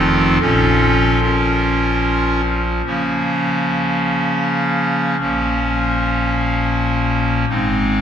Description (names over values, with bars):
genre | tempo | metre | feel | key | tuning
classical, chorale-style piece for pipe organ | 72-79 BPM | 3/4 | rubato | Bb minor | A4 = 440 Hz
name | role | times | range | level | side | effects
pipe organ, clarinet reed | solo | 0.0-8.0 s | F1 to Bb4 | -15 LUFS | equal | none
room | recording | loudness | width
wet church reverb, RT60 3.0 s | heard from further back in the room | -15 LUFS | side -9 dB against mid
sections
0.0-2.9 A section; 2.9-8.0 A section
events
none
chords
0.4 Bbm; 2.9 Bbm/Db; 5.2 Bbm; 7.5 Ab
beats
| 0.41 1.23 2.05 | 2.86 3.65 4.43 | 5.20 5.96 6.73 | 7.49